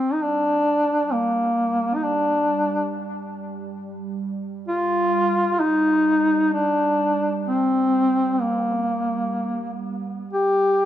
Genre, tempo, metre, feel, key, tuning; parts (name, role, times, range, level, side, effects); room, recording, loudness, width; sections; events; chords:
caucasian folk, Caucasian lament; free time; G minor; A4 = 440 Hz
mellow duduk; melody; 0.0-10.9 s; Bb3 to G4; -19 LUFS; left 1 dB; tape echo
deep dark ambient pad; drone; 0.2-10.9 s; G3; -31 LUFS; right 6 dB; chorus, built-in reverb
moderate recital hall reverb, RT60 1.4 s; close, detailed microphones; -19 LUFS; side -12 dB against mid
0.0-10.9 A section